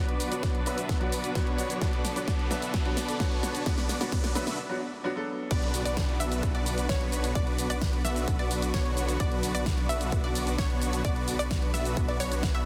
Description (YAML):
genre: EDM, festival progressive house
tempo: 130 BPM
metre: 4/4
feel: straight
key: B minor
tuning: A4 = 440 Hz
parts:
  - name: bright baby grand piano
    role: accompaniment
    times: 0.0-5.5 s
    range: F#3 to B4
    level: -38 LUFS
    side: equal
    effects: sidechain pumping, tape echo
  - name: clear studio string section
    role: sustained chords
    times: 0.0-12.7 s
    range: D3 to B4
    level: -41 LUFS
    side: equal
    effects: sidechain pumping
  - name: dense compressed supersaw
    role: riff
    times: 0.0-12.7 s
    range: B3 to E5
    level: -35 LUFS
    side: equal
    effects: sidechain pumping, low-pass filter, tape echo
  - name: riser and downlifter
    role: sound effects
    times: 0.9-9.2 s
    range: none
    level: -45 LUFS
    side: equal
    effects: none
  - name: big-room dance drum kit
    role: drums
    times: 0.1-12.6 s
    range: crash cymbal, hi-hat, shaker, snare drum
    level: -38 LUFS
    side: equal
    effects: none
  - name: electronic kick drum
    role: drums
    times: 0.4-12.5 s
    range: none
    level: -32 LUFS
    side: equal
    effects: none
  - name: unison pluck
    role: arpeggios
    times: 5.5-12.7 s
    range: C#5 to E5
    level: -39 LUFS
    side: equal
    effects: sidechain pumping, tape echo
  - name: detuned saw bass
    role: bass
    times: 5.5-12.7 s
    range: B1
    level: -36 LUFS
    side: equal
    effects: sidechain pumping
room: light reverb, digital ambience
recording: dense, heavily limited modern master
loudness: -29 LUFS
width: mono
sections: 0.0-5.5 A section; 5.5-12.7 B section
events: build-up 0.0-5.5; drum fill 0.0-4.6; riser 0.9-4.6; break 4.6-5.5; drop 5.5-12.7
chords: 0.0 Bm